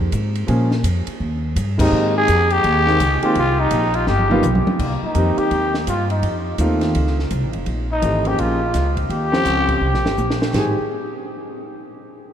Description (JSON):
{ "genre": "jazz, small-group swing and bop", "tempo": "167 BPM", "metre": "4/4", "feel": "swing 63% on 8ths", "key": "Ab major", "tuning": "A4 = 440 Hz", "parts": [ { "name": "upright bass", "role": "bass", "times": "0.0-10.7 s", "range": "F1 to Bb2", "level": "-20 LUFS", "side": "equal", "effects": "none" }, { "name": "compact cocktail drum kit", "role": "drums", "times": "0.1-10.6 s", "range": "crash cymbal, hi-hat, kick drum, ride cymbal, snare drum, toms", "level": "-27 LUFS", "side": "right 1 dB", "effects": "none" }, { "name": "clear concert grand piano", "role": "accompaniment", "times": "0.5-10.7 s", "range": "Eb3 to Ab4", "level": "-23 LUFS", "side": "equal", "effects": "none" }, { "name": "growling trumpet", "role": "melody", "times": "1.8-10.8 s", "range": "Eb4 to Ab4", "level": "-21 LUFS", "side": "left 1 dB", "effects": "none" } ], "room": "wet cathedral reverb, RT60 5.4 s", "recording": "in a vast, echoing space", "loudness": "-16 LUFS", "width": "side -9 dB against mid", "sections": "0.0-4.8 A section; 4.8-10.5 B section; 10.5-12.0 C section", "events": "band accent 1.7; drum fill 4.1-4.8, 9.8-10.5", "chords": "0.5 Bbm7; 1.2 Eb; 1.9 Abmaj9; 4.1 G7alt; 4.8 Cm7; 6.2 F7; 7.7 Bbm7; 9.1 Eb13; 10.5 Abmaj7" }